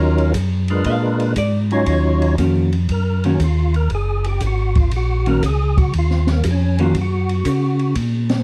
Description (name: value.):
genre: soul jazz organ trio.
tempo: 118 BPM.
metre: 4/4.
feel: swing 68% on 8ths.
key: Eb minor.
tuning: A4 = 440 Hz.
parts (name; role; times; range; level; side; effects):
percussive tonewheel organ; melody; 0.0-8.0 s; Gb3 to Db5; -24 LUFS; equal; slow rotary speaker, overdrive, chorus vibrato.
vintage hollow-body jazz guitar; accompaniment; 0.0-6.9 s; Eb3 to F5; -22 LUFS; equal; none.
mellow tonewheel organ; bass; 0.0-8.4 s; Gb1 to Db3; -20 LUFS; equal; chorus vibrato, slow rotary speaker.
open jazz drum kit; drums; 0.2-8.4 s; hi-hat, kick drum, ride cymbal, snare drum; -27 LUFS; equal; none.
room: light reverb.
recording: dark, warm production.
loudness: -18 LUFS.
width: mono.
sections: 0.0-1.9 A section; 1.9-8.4 A section.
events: hollow-body jazz guitar solo 0.0-1.9; tonewheel organ solo 1.9-8.4.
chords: 0.0 Ebm7; 0.9 Bb7b9; 1.9 Ebm7.